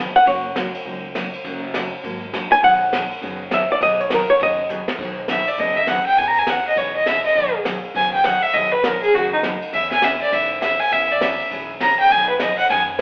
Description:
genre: country, western swing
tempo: 203 BPM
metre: 4/4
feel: swing 63% on 8ths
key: B major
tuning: A4 = 440 Hz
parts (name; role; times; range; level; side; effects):
- picked steel-string acoustic guitar; accompaniment; 0.0-12.9 s; B2 to G#4; -33 LUFS; equal; none
- upright bass; bass; 0.0-13.0 s; F#1 to F#2; -41 LUFS; equal; none
- archtop guitar, miked and amplified; melody; 0.2-4.9 s; A#4 to G#5; -18 LUFS; equal; none
- vintage brush drum kit; drums; 0.2-13.0 s; crash cymbal, hi-hat, kick drum, ride cymbal, snare drum; -28 LUFS; equal; none
- rich fiddle; second line; 5.3-12.8 s; D#4 to A#5; -19 LUFS; equal; none
room: wet large studio reverb, RT60 1.0 s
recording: band playing live in one room, telephone sound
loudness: -19 LUFS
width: mono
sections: 0.0-5.0 A section; 5.0-13.0 A section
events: hollow-body jazz guitar solo 0.0-5.0; drum fill 4.7; fiddle solo 5.0-13.0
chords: 0.3 F#6; 2.6 B6; 6.2 E6; 7.4 B6; 9.7 E6; 12.1 B6

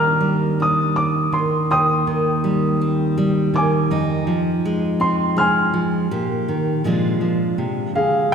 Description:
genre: folk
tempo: 81 BPM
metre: 3/4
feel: straight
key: Eb major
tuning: A4 = 439 Hz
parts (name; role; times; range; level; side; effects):
- warm upright piano; melody; 0.0-8.3 s; Ab4 to F6; -20 LUFS; equal; none
- fingerpicked steel-string acoustic guitar; accompaniment; 0.0-8.3 s; Eb2 to G4; -18 LUFS; right 1 dB; none
room: wet concert hall reverb, RT60 2.2 s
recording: recorded in a church or concert hall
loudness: -17 LUFS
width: side -6 dB against mid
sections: 0.0-8.3 A section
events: none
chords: 0.0 Ebmaj7; 1.7 Abmaj7/Eb (rootless); 3.9 Fm7; 6.1 Eb/Bb; 6.9 Bb7

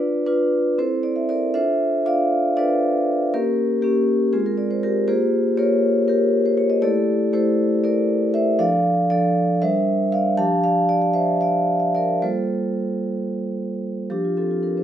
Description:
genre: classical, contemporary piece for solo vibraphone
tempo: 235 BPM (eighths)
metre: 7/8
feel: rubato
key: F major from 6.8 s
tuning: A4 = 440 Hz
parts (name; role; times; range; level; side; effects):
- vibraphone with medium mallets; solo; 0.0-14.8 s; F3 to A5; -18 LUFS; equal; none
room: light reverb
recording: none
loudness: -18 LUFS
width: side -10 dB against mid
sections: 0.0-14.1 A section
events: none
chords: 0.0 Dm6; 0.8 C6; 1.5 Dm6; 3.3 Bbm6; 4.3 G#6; 5.1 Bbm6; 6.8 Am7; 8.6 F6; 9.6 Gm; 10.4 Fsus2; 12.2 Gm11; 14.1 F6

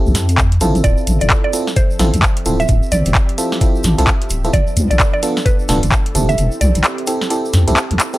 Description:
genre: UK garage, two-step garage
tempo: 130 BPM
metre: 4/4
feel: swing 61% on 16ths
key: D dorian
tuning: A4 = 439 Hz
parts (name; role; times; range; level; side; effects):
- FM electric piano; stabs; 0.0-8.2 s; B3 to A4; -20 LUFS; right 1 dB; chorus, tape echo
- deep soft wobble bass; bass; 0.1-8.0 s; D1 to F2; -14 LUFS; equal; chorus
- garage drum kit; drums; 0.1-8.2 s; handclaps, hi-hat, snare drum; -19 LUFS; equal; none
- tube shaker; percussion; 0.1-8.2 s; none; -29 LUFS; right 2 dB; none
- electronic kick drum; drums; 0.4-6.0 s; none; -15 LUFS; equal; none
- mallet-like synth pluck; melody; 0.8-6.8 s; B4 to E5; -22 LUFS; right 2 dB; chorus, tape echo
- warm analog pad; sustained chords; 0.8-8.2 s; F3 to E5; -28 LUFS; right 1 dB; chorus, sidechain pumping
room: little or no reverb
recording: dry, gritty hardware recording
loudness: -12 LUFS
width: side -17 dB against mid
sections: 0.0-8.2 A section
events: kick drops out 6.4-8.2; drum fill 8.0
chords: 0.0 Fmaj9; 0.8 Dm9; 4.5 G7 (rootless); 6.2 Fmaj9

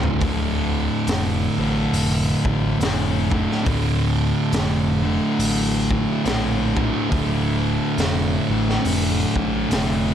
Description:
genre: stoner and doom metal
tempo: 70 BPM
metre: 4/4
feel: swing 59% on 8ths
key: D minor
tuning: A4 = 436 Hz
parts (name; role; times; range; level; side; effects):
- thick fuzz guitar; riff; 0.0-10.1 s; D2 to D3; -23 LUFS; left 7 dB; distortion
- thick fuzz guitar; riff; 0.0-10.1 s; D2 to D3; -23 LUFS; right 8 dB; distortion
- overdriven picked electric bass; bass; 0.0-10.1 s; D1 to D2; -25 LUFS; equal; none
- raw garage drum kit; drums; 0.0-10.0 s; hi-hat, kick drum, snare drum, toms; -26 LUFS; equal; none
room: light reverb, small room ambience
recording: none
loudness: -18 LUFS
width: side -9 dB against mid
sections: 0.2-10.1 A section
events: drum fill 0.0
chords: 0.2 Dm

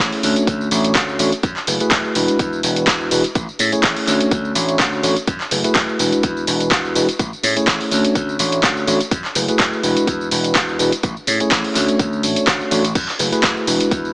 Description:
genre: filtered disco house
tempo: 125 BPM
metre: 4/4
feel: swing 55% on 16ths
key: unclear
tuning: A4 = 440 Hz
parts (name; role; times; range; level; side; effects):
- mellow tine electric piano; accompaniment; 0.0-14.1 s; G#3 to C#5; -19 LUFS; equal; phaser, sidechain pumping
- vintage slap bass; bass; 0.0-14.1 s; E1 to A2; -24 LUFS; equal; sidechain pumping
- punchy analog drum machine; drums; 0.0-14.1 s; crash cymbal, handclaps, hi-hat, tambourine; -18 LUFS; equal; overdrive
- electronic kick drum; drums; 0.5-14.0 s; none; -20 LUFS; equal; none
room: light reverb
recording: small speaker sound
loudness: -15 LUFS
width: side -26 dB against mid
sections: 0.0-14.1 A section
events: none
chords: 0.2 Dmaj7; 1.4 F#m11; 2.2 E9; 3.4 Amaj7; 4.1 Dmaj7; 5.3 F#m11; 6.0 E9; 7.2 Amaj7; 7.9 Dmaj7; 9.1 F#m11; 9.8 E9; 11.0 Amaj7; 11.8 Dmaj7; 13.0 F#m11

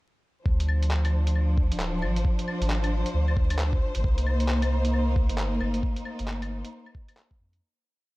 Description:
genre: future garage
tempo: 134 BPM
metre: 4/4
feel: swing 62% on 16ths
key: C minor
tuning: A4 = 442 Hz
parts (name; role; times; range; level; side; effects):
- clear studio string section; sustained chords; 0.4-7.6 s; F3 to C5; -30 LUFS; equal; sidechain pumping
- soft dub sub bass; bass; 0.5-7.6 s; D1 to F2; -25 LUFS; equal; sidechain pumping
- electronic kick drum; drums; 0.5-7.4 s; none; -25 LUFS; equal; none
- lo-fi sampler-style drum kit; drums; 0.6-7.6 s; claves, handclaps, hi-hat; -35 LUFS; left 1 dB; none
room: light reverb, digital ambience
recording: dark, warm production, vinyl crackle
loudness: -23 LUFS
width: side -20 dB against mid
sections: 0.5-7.6 groove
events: fade-out 5.2-7.6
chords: 0.5 Dm7b5; 4.0 Cm7

